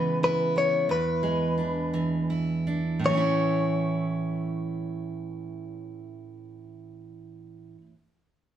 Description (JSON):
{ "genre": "pop", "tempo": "52-62 BPM (dotted quarters)", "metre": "6/8", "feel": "straight", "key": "A major", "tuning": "A4 = 440 Hz", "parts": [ { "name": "direct-recorded clean electric guitar", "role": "melody", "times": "0.0-7.8 s", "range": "B4 to C#5", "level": "-26 LUFS", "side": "left 2 dB", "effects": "none" }, { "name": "fingerpicked steel-string acoustic guitar", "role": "accompaniment", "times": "0.0-7.9 s", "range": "E2 to E4", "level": "-28 LUFS", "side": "right 3 dB", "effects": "none" } ], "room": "moderate stone room reverb, RT60 1.0 s", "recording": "band playing live in one room", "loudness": "-24 LUFS", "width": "side -10 dB against mid", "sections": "0.0-3.0 A section; 3.0-7.7 B section", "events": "slowing down 0.0-3.0", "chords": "0.0 C#m7; 0.9 E7; 3.0 A", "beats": "| 0.89 1.93 | 3.05 4.21 | 5.38 6.54" }